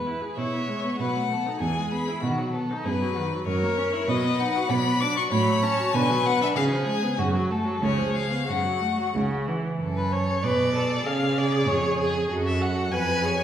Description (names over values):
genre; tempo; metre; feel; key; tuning
quick classical-period movement for string quartet; 97 BPM; 2/4; straight; F# minor from 4.7 s; A4 = 439 Hz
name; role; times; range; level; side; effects
rich violin; second line; 0.0-13.4 s; F#4 to G#5; -29 LUFS; left 1 dB; none
clear viola; accompaniment; 0.0-13.3 s; C#3 to B4; -28 LUFS; right 1 dB; none
rich cello; bass; 0.0-13.4 s; C#2 to C#3; -27 LUFS; right 2 dB; none
clear violin; melody; 0.4-13.4 s; G#4 to D6; -29 LUFS; left 6 dB; none
room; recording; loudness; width
wet recital hall reverb, RT60 1.6 s; heard from further back in the room; -22 LUFS; side -10 dB against mid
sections
0.0-9.8 A section; 9.8-13.4 B section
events
none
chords
0.0 E; 1.0 B7; 1.6 E; 2.2 B; 3.5 F#7; 4.1 B; 4.7 Bm; 5.3 F#m/A; 5.9 Bm; 6.6 C#7; 7.2 F#m; 7.8 C#7; 8.5 F#m; 10.4 G#dim/B; 11.1 C#; 12.3 F#m; 12.9 C#7/E#